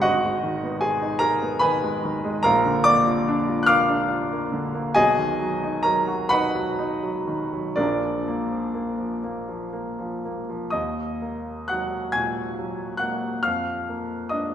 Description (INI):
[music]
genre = classical, romantic nocturne for solo piano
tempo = 39-53 BPM (dotted quarters)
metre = 6/8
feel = rubato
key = Eb minor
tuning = A4 = 440 Hz
[part]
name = warm grand piano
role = solo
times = 0.0-14.5 s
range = Ab1 to Ab6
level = -21 LUFS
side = equal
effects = none
[sound]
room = moderate concert hall reverb, RT60 2.3 s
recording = recorded in a church or concert hall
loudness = -21 LUFS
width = side -10 dB against mid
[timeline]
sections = 0.0-10.8 A section; 10.8-14.5 B section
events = none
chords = 0.1 Abm; 2.5 Bb; 5.0 B; 7.8 Bb; 10.8 Ebm; 13.5 Bb/F